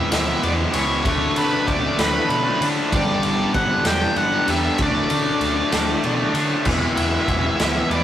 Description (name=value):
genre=quiet-loud alternative rock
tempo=64 BPM (dotted quarters)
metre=6/8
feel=straight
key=unclear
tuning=A4 = 440 Hz
part: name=octave-fuzz lead guitar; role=melody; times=0.0-8.0 s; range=B4 to G5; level=-24 LUFS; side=equal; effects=distortion, digital delay
part: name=distorted electric guitar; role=riff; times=0.0-8.0 s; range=G2 to E4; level=-26 LUFS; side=left 6 dB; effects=distortion
part: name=distorted electric guitar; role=riff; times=0.0-8.0 s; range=G2 to E4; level=-27 LUFS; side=right 6 dB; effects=overdrive
part: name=high-gain distorted guitar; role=riff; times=0.0-8.0 s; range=E2 to D4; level=-25 LUFS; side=equal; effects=distortion
part: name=overdriven picked electric bass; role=bass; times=0.1-8.0 s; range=E1 to D3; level=-27 LUFS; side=equal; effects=none
part: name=raw garage drum kit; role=drums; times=0.1-8.0 s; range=crash cymbal, kick drum, ride cymbal, snare drum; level=-23 LUFS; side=equal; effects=none
part: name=tonewheel organ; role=sustained chords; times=6.7-8.0 s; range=F#4 to G#5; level=-31 LUFS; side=left 1 dB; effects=chorus vibrato, slow rotary speaker
room=moderate stone room reverb, RT60 0.9 s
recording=rough rehearsal-room recording, tube saturation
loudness=-17 LUFS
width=side -11 dB against mid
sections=0.0-8.0 A section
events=none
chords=0.0 E; 1.1 D6; 2.9 G; 4.8 D; 6.7 Eadd9